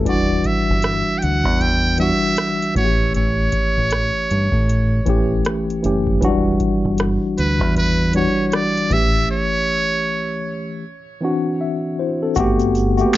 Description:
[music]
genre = R&B, neo-soul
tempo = 78 BPM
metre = 4/4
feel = swing 61% on 16ths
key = E dorian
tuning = A4 = 441 Hz
[part]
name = tine electric piano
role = accompaniment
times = 0.0-13.2 s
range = E3 to E5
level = -20 LUFS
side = left 2 dB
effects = medium stereo tremolo
[part]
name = deep dub fingered electric bass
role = bass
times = 0.0-13.0 s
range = E1 to A2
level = -21 LUFS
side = equal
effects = none
[part]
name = trumpet with metal mute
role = melody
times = 0.1-10.8 s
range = B4 to G5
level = -21 LUFS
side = right 2 dB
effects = plate reverb
[part]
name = booming analog drum machine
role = drums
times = 0.1-13.2 s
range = handclaps, hi-hat, kick drum, rim click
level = -23 LUFS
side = equal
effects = none
[part]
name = tube shaker and finger snaps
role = percussion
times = 12.4-13.2 s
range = none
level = -30 LUFS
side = right 8 dB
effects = none
[sound]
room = light reverb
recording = nothing above 7.5 kHz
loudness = -16 LUFS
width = side -15 dB against mid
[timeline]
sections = 0.0-12.4 A section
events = break 9.3-12.4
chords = 0.1 Em9; 2.8 A7; 6.2 Em9; 8.9 A7; 10.8 D9; 12.4 Gmaj9

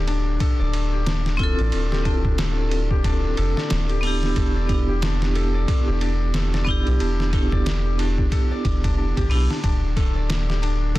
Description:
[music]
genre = trip hop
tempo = 91 BPM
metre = 4/4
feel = swing 59% on 16ths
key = D dorian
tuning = A4 = 444 Hz
[part]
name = Celtic harp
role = arpeggios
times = 0.0-11.0 s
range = D4 to D5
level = -30 LUFS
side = left 6 dB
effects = low-pass filter, tape echo
[part]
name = soft dub sub bass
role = bass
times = 0.0-10.9 s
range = D1 to B1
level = -22 LUFS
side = equal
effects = none
[part]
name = trip hop sampler-style drum kit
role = drums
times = 0.1-11.0 s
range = hi-hat, kick drum, ride cymbal, snare drum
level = -24 LUFS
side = equal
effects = studio reverb
[part]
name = vibraphone with hard mallets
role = accompaniment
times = 1.4-9.5 s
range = B3 to A4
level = -27 LUFS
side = right 2 dB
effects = tremolo, tape echo
[sound]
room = digital ambience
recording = dense, heavily limited modern master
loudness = -19 LUFS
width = side -17 dB against mid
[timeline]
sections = 0.0-11.0 A section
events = none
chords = 0.0 Dm7; 4.4 Em7; 9.6 D5

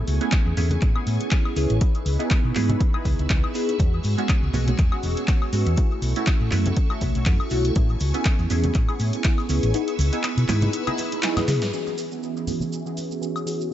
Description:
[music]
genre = filtered disco house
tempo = 121 BPM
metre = 4/4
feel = swing 55% on 16ths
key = E major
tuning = A4 = 440 Hz
[part]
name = funky polysynth comp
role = accompaniment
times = 0.0-13.7 s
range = E3 to G#4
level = -26 LUFS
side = right 1 dB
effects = chorus, phaser, vintage 12-bit sampler grit, sidechain pumping, low-pass filter, dub echo
[part]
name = phased string machine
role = sustained chords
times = 0.0-13.7 s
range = A3 to E6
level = -35 LUFS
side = equal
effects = ensemble chorus, phaser, sidechain pumping, low-pass filter
[part]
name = hollow-body short-scale fingered electric bass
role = bass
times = 0.1-11.7 s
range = E1 to C#3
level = -23 LUFS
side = equal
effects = sidechain pumping, low-pass filter
[part]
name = punchy analog drum machine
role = drums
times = 0.1-13.7 s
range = handclaps, hi-hat, shaker, snare drum, woodblock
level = -30 LUFS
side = left 1 dB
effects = overdrive, sidechain pumping on hats, sidechain pumping on cymbals, sidechain pumping on perc, dub echo
[part]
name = maracas and congas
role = percussion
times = 0.1-13.7 s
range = none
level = -32 LUFS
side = right 2 dB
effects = sidechain pumping on perc, low-pass filter on perc, dub echo
[part]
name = electronic kick drum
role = drums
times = 0.3-9.4 s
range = none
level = -21 LUFS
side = equal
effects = overdrive
[sound]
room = little or no reverb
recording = echo-heavy mix, nothing above 7.9 kHz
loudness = -20 LUFS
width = side -12 dB against mid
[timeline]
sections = 0.0-11.7 A section; 11.7-13.7 B section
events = filter sweep 0.0-11.7, 11.7-13.7; kick drops out 9.7-11.7; drum fill 11.2-11.7; band accent 11.6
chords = 0.0 Amaj7; 1.8 C#m7; 3.8 E6; 5.8 B9sus4; 7.8 Amaj7; 9.7 C#m7; 11.7 E6

